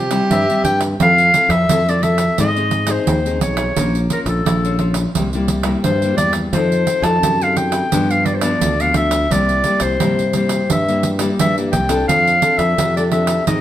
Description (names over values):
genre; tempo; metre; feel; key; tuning
samba and choro; 86 BPM; 4/4; straight; F major; A4 = 440 Hz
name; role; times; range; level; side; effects
clear clarinet; melody; 0.0-13.6 s; A4 to A5; -17 LUFS; left 1 dB; none
overdriven harmonica; second line; 0.0-1.0 s; G4; -21 LUFS; right 2 dB; none
nylon-string guitar; accompaniment; 0.0-13.6 s; G2 to C5; -21 LUFS; left 3 dB; none
modern bright fingered electric bass; bass; 0.0-13.6 s; Bb1 to C3; -20 LUFS; equal; none
pandeiro; percussion; 0.1-13.6 s; none; -21 LUFS; right 4 dB; none
room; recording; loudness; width
wet stone room reverb, RT60 1.1 s; band playing live in one room; -14 LUFS; side -12 dB against mid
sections
1.0-13.6 A section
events
none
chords
0.0 C; 1.0 Fmaj7; 2.4 Ab; 3.8 Bbmadd9; 5.2 C7; 6.5 F7; 7.9 G7; 9.3 C7; 12.1 F6